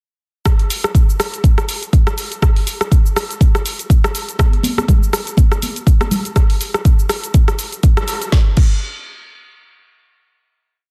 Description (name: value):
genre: house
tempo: 122 BPM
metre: 4/4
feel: swing 56% on 16ths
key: none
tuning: none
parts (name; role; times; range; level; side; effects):
- deep house drum kit; drums; 0.5-8.7 s; crash cymbal, hi-hat, rim click, shaker, snare drum; -24 LUFS; equal; soft clipping on snare
- electronic kick drum; drums; 0.5-8.7 s; none; -14 LUFS; equal; none
- congas; percussion; 4.4-6.2 s; none; -24 LUFS; equal; none
room: light reverb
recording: dense, heavily limited modern master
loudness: -15 LUFS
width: mono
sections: 0.5-8.3 drop; 8.3-10.9 final hit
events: drop 0.5-8.3; band accent 8.0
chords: none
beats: | 0.46 0.95 1.44 1.93 | 2.42 2.92 3.41 3.90 | 4.39 4.88 5.38 5.87 | 6.36 6.85 7.34 7.83 | 8.33